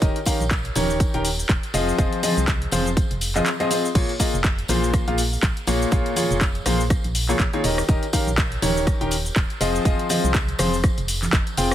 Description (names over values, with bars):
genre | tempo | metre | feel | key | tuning
piano house | 122 BPM | 4/4 | swing 57% on 16ths | Bb dorian | A4 = 441 Hz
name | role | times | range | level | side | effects
clear concert grand piano | riff | 0.0-11.7 s | Bb2 to G5 | -24 LUFS | left 2 dB | vintage 12-bit sampler grit, sidechain pumping, digital delay
organ-like FM bass | bass | 0.0-11.7 s | Eb1 to C2 | -26 LUFS | equal | sidechain pumping
electronic kick drum | drums | 0.0-11.4 s | none | -21 LUFS | equal | none
punchy analog drum machine | drums | 0.0-11.7 s | cabasa, crash cymbal, handclaps, hi-hat, rim click | -26 LUFS | left 1 dB | overdrive
tambourine and congas | percussion | 0.0-11.7 s | none | -31 LUFS | right 3 dB | none
room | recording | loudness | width
little or no reverb | heavily compressed radio sound | -19 LUFS | side -12 dB against mid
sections
0.0-11.7 A section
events
none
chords
0.0 Eb7; 1.7 Fm7; 4.0 Bbm7; 7.6 Eb7; 9.6 Fm7